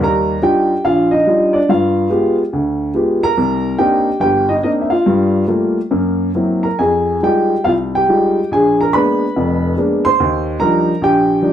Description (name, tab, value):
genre	solo jazz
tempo	142 BPM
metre	4/4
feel	swing 66% on 8ths, rubato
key	Eb major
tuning	A4 = 437 Hz
part	warm upright piano	solo	0.0-11.5 s	F1 to C6	-12 LUFS	equal	none
room	wet studio reverb, RT60 0.5 s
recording	heard from further back in the room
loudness	-12 LUFS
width	side -10 dB against mid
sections	0.0-11.5 A section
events	none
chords	0.0 Ebmaj9; 1.7 G7b9; 3.4 Cm9; 5.1 Gm9; 5.9 Gb7#11; 6.8 Fm9; 8.5 Bb7b9; 10.2 Ebmaj9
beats	0.42 0.85 1.28 | 1.71 2.13 2.54 2.96 | 3.38 3.79 4.21 4.64 | 5.06 5.48 5.91 6.34 | 6.79 7.23 7.66 8.09 | 8.52 8.94 9.36 9.78 | 10.19 10.61 11.02 11.44